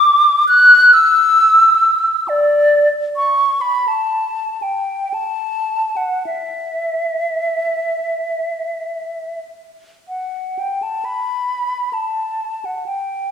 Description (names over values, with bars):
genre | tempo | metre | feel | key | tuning
classical, free, expressive piece for unaccompanied flute | 36-69 BPM | 3/4 | rubato | unclear | A4 = 440 Hz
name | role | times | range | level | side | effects
mellow hollow silver concert flute | solo | 0.0-13.3 s | D5 to F#6 | -13 LUFS | equal | none
room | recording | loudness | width
wet recital hall reverb, RT60 1.5 s | heard from further back in the room | -13 LUFS | side -8 dB against mid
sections
0.0-10.1 A section; 10.1-13.3 B section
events
none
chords
none